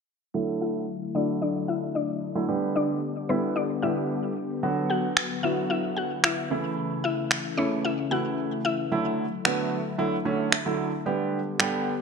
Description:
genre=dance-pop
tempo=112 BPM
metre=4/4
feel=straight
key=D major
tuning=A4 = 442 Hz
part: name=warm grand piano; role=accompaniment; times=0.3-11.9 s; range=C#3 to G4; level=-28 LUFS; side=right 4 dB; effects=wide subtle chorus, low-pass filter
part: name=sweeping resonant pad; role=sustained chords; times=0.3-12.0 s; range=C#3 to G4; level=-32 LUFS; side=left 4 dB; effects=lush chorus, low-pass filter
part: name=mallet-like synth pluck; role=melody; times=0.6-8.8 s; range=B3 to F#5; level=-29 LUFS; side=left 4 dB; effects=chorus, low-pass filter, digital delay
part: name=electronic finger snaps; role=drums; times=5.2-11.7 s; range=none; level=-25 LUFS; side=right 2 dB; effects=none
room=moderate plate reverb, RT60 1.9 s, digital ambience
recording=bright 1980s-style digital production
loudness=-24 LUFS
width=side -5 dB against mid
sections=0.3-8.9 A section; 8.9-12.0 B section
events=filter sweep 0.3-8.9; drums muted 8.4-8.9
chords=0.3 Dadd9; 2.5 G; 4.6 Bm; 6.5 A/C#; 8.9 Dadd9; 11.1 G

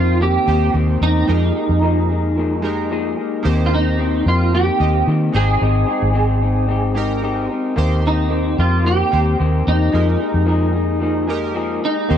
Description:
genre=indie pop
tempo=111 BPM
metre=4/4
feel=straight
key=unclear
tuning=A4 = 436 Hz
part: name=electric guitar through a small old amp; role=melody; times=0.0-12.2 s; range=Eb4 to Ab4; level=-20 LUFS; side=right 2 dB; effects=ensemble chorus, tape echo
part: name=chorused retro synth keys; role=accompaniment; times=0.0-12.2 s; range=Ab3 to G5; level=-26 LUFS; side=right 5 dB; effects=cassette tape
part: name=electric guitar through a small old amp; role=accompaniment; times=0.0-12.2 s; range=Eb3 to Ab4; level=-23 LUFS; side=left 7 dB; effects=wide subtle chorus, vibrato effect
part: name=vintage muted fingered electric bass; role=bass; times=0.0-12.2 s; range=Ab1 to Eb3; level=-18 LUFS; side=equal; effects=none
room=light reverb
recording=dry, close 1970s-style studio recording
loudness=-15 LUFS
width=side -9 dB against mid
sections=0.0-12.2 A section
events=none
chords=0.0 Eb6; 1.3 Fm11; 3.4 Eb6; 5.3 Abmaj7; 7.8 Eb6; 9.9 Fm11

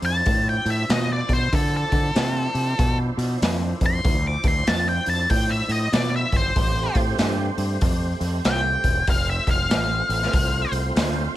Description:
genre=blues rock power trio and southern rock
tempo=95 BPM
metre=4/4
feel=swing 62% on 8ths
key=unclear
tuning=A4 = 440 Hz
part: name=overdriven tonewheel organ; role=sustained chords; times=0.0-11.4 s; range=F3 to C5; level=-32 LUFS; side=right 3 dB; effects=chorus vibrato, slow rotary speaker
part: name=growling fingered electric bass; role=bass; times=0.0-11.3 s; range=E1 to D3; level=-24 LUFS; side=equal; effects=overdrive
part: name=raw garage drum kit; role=drums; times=0.0-11.1 s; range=hi-hat, kick drum, snare drum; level=-24 LUFS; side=equal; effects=none
part: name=octave-fuzz lead guitar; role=melody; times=0.1-10.7 s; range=A4 to D6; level=-25 LUFS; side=left 1 dB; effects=distortion, slapback echo
room=small room reverb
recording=none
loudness=-19 LUFS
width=side -14 dB against mid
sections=0.0-11.4 A section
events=lead electric guitar solo 0.0-11.4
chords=0.0 Dm9; 6.6 Am7; 9.1 F

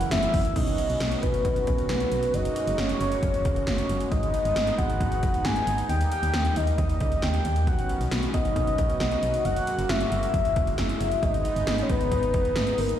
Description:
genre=synth-pop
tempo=135 BPM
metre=4/4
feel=straight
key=G# minor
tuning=A4 = 441 Hz
part: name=soft octave-layered synth lead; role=melody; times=0.0-13.0 s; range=A#4 to G#5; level=-27 LUFS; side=left 1 dB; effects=chorus, phaser, tape echo
part: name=clear concert grand piano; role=accompaniment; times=0.0-0.5 s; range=C#4 to A#4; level=-48 LUFS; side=left 4 dB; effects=none
part: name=brassy analog pad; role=sustained chords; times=0.0-13.0 s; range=C#3 to F#4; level=-33 LUFS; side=equal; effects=chorus
part: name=solid FM bass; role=bass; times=0.0-12.9 s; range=E1 to D#2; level=-28 LUFS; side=equal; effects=none
part: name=80s electronic pad drums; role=drums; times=0.0-13.0 s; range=crash cymbal, hi-hat, kick drum, snare drum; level=-28 LUFS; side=equal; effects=none
room=light reverb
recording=played on a big sound system in a bare room, stone room reverb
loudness=-22 LUFS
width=side -10 dB against mid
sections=0.6-13.0 A section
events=none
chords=0.0 F#7; 0.6 Badd9; 2.3 F#add9; 4.1 G#m; 5.9 D#; 7.7 Badd9; 9.4 F#add9; 11.2 G#m

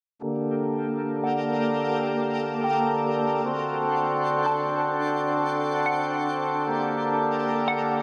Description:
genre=hip hop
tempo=149 BPM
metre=4/4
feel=half-time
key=G harmonic minor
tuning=A4 = 439 Hz
part: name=hand-pumped harmonium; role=sustained chords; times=0.2-8.0 s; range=D3 to A4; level=-26 LUFS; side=equal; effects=low-pass filter
part: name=twinkling granular texture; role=texture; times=0.5-8.0 s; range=Bb3 to F#5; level=-35 LUFS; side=equal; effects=built-in reverb
part: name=hollow square pluck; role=melody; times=1.2-8.0 s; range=F#5 to A5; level=-34 LUFS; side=equal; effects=chorus, low-pass filter, diffuse ambient delay
room=wet plate reverb, RT60 3.4 s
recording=dreamy mix soaked in reverb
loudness=-25 LUFS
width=mono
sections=0.2-8.0 A section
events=filter sweep 0.2-8.0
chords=0.2 Gmadd9; 3.4 D7; 6.7 Gmadd9

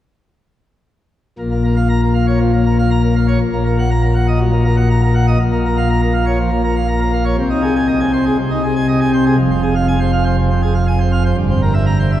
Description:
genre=classical, organ toccata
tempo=120 BPM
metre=4/4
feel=straight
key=unclear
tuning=A4 = 441 Hz
part: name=pipe organ, plenum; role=solo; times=1.4-12.2 s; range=F1 to Bb5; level=-13 LUFS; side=equal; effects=none
room=wet cathedral reverb, RT60 5.2 s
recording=heard from further back in the room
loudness=-13 LUFS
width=side -12 dB against mid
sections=1.4-12.2 A section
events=none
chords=1.4 Bbm; 3.4 Ebm/Bb; 5.4 Bbm; 7.4 Ab/C; 9.4 Fm; 11.4 C7/G

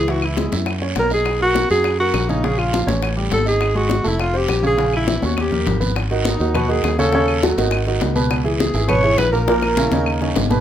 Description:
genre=Afro-Cuban jazz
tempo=204 BPM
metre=4/4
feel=straight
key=G# minor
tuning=A4 = 440 Hz
part: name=breathy alto saxophone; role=melody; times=0.0-10.5 s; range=D#4 to C#5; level=-20 LUFS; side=equal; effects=none
part: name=dark baby grand piano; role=accompaniment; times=0.0-10.6 s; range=A#2 to E5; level=-22 LUFS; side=right 2 dB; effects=none
part: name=fingered electric bass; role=bass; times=0.0-10.6 s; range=E#1 to F#2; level=-22 LUFS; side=equal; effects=none
part: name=bongos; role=percussion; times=0.1-10.6 s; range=none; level=-27 LUFS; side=left 7 dB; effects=none
part: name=congas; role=percussion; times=0.1-10.6 s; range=none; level=-26 LUFS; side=left 3 dB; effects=none
part: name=guiro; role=percussion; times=0.1-10.6 s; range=none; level=-31 LUFS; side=right 5 dB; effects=none
part: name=claves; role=percussion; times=0.2-10.2 s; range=none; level=-31 LUFS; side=left 4 dB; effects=none
room=light reverb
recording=minimal, uncompressed stereo recording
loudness=-16 LUFS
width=side -10 dB against mid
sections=0.0-6.0 A section; 6.0-10.6 B section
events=drum fill 5.2-6.0, 9.5-10.6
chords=0.1 C#m; 0.7 F#5; 1.3 Bmaj7; 2.4 A#m; 3.0 A7; 3.6 G#5; 4.2 F; 4.8 A#dim; 5.4 D#7; 6.0 G#m7; 7.1 D#m7b5; 7.7 G#5; 8.3 C#m7; 9.5 A#dim; 10.1 D#5

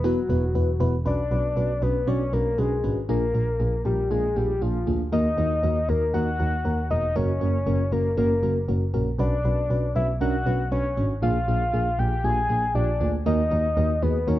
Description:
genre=synth-pop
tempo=118 BPM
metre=4/4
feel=straight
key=unclear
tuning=A4 = 440 Hz
part: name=soft octave-layered synth lead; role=melody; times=0.0-14.4 s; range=E#4 to G#5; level=-26 LUFS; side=left 2 dB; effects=chorus, analog delay
part: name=mellow FM electric piano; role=accompaniment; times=0.0-14.4 s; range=A#3 to D5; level=-28 LUFS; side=equal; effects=chorus, phaser
part: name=dark double bass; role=bass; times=0.0-14.4 s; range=E1 to D#2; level=-24 LUFS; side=equal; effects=none
room=small room ambience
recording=dry, gritty hardware recording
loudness=-21 LUFS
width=side -14 dB against mid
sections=0.0-1.1 A section; 1.1-14.4 B section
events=none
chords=0.0 Esus2; 1.1 Bmadd9; 3.1 A#7; 5.1 D#m; 7.2 F#; 9.2 Bmadd9; 11.2 A#7; 13.3 D#m

